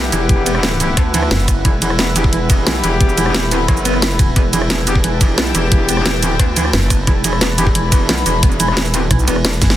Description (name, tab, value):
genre	dark technical drum and bass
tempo	177 BPM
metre	4/4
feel	straight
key	E minor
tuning	A4 = 441 Hz
part	sweeping resonant pad	sustained chords	0.0-9.8 s	E4 to A5	-26 LUFS	right 1 dB	chorus, sidechain pumping
part	mellow brass ensemble	stabs	0.0-9.0 s	B3 to G4	-25 LUFS	left 4 dB	dub echo
part	metallic wobble bass	bass	0.0-9.6 s	E1 to D2	-19 LUFS	equal	chorus, overdrive, sidechain pumping
part	drum and bass drum kit	drums	0.0-9.8 s	hi-hat, ride cymbal, rim click, shaker, snare drum	-18 LUFS	right 1 dB	studio reverb
part	rich chamber string section	texture	0.0-9.8 s	E4 to B5	-24 LUFS	left 2 dB	sidechain pumping
part	mellow electric guitar	arpeggios	0.1-9.7 s	E3 to B3	-22 LUFS	right 2 dB	spring reverb, sidechain pumping, dub echo
part	electronic kick drum	drums	0.3-9.7 s	none	-14 LUFS	equal	studio reverb
part	growling FM bass	bass	1.3-1.6, 6.7-7.1, 9.1-9.8 s	F#1 to B1	-16 LUFS	equal	none
room	little or no reverb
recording	dense, heavily limited modern master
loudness	-12 LUFS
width	side -13 dB against mid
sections	0.0-9.8 A section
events	drop 0.0-9.8; drum fill 9.6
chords	0.0 Em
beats	| 0.29 0.63 0.97 1.31 | 1.65 1.99 2.33 2.67 | 3.00 3.34 3.68 4.02 | 4.36 4.70 5.04 5.38 | 5.72 6.06 6.39 6.73 | 7.07 7.41 7.75 8.09 | 8.43 8.77 9.11 9.45